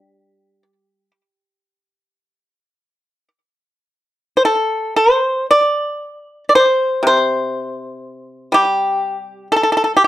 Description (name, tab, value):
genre	chinese traditional, Chinese solo plucked strings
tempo	49-63 BPM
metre	4/4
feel	rubato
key	unclear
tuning	A4 = 440 Hz
part	pipa	solo	0.0-10.1 s	C3 to D5	-13 LUFS	equal	slapback echo
room	light reverb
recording	dry, close 1970s-style studio recording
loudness	-14 LUFS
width	side -14 dB against mid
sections	0.0-4.4 A section; 4.4-10.1 B section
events	none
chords	none